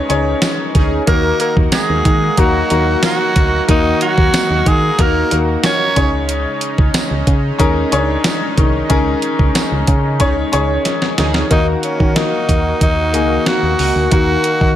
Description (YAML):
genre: 1980s-style pop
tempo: 92 BPM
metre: 4/4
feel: straight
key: Eb minor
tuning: A4 = 443 Hz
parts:
  - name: clear baby grand piano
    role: accompaniment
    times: 0.0-14.8 s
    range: Db3 to Db5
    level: -18 LUFS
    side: left 4 dB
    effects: none
  - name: lush unison pad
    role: sustained chords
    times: 0.0-14.8 s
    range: Eb3 to Gb4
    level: -24 LUFS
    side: right 2 dB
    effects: chorus
  - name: solid FM bass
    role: bass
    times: 0.1-14.8 s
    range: C2 to Eb3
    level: -18 LUFS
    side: equal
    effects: none
  - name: clean 12-bit digital drum machine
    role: drums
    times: 0.1-14.8 s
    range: hi-hat, kick drum, snare drum, tambourine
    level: -16 LUFS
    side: right 1 dB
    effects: gated reverb
  - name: analog synth brass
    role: stabs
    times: 0.8-1.0, 8.9-14.8 s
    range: Db4 to Bb4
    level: -25 LUFS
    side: right 2 dB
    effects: chorus
  - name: raspy tenor saxophone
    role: melody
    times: 1.1-6.1, 11.5-14.7 s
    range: Db4 to Db5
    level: -18 LUFS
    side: right 1 dB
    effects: none
  - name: twangy electric guitar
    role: second line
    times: 1.1-6.1 s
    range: Eb3 to Db4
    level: -25 LUFS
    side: right 7 dB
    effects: lush chorus, tape echo
room: light reverb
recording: none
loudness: -12 LUFS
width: side -11 dB against mid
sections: 0.0-11.5 A section; 11.5-14.8 B section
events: band accent 0.0-1.1, 8.9-11.5; drum fill 10.9-11.5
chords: 0.0 Dbsus2; 1.1 Ebm; 6.0 Dbsus2; 11.5 Ebm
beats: 0.42 | 1.08 1.73 2.38 3.03 | 3.69 4.34 4.99 5.64 | 6.29 6.95 7.60 8.25 | 8.90 9.55 10.21 10.86 | 11.51 12.16 12.82 13.47 | 14.12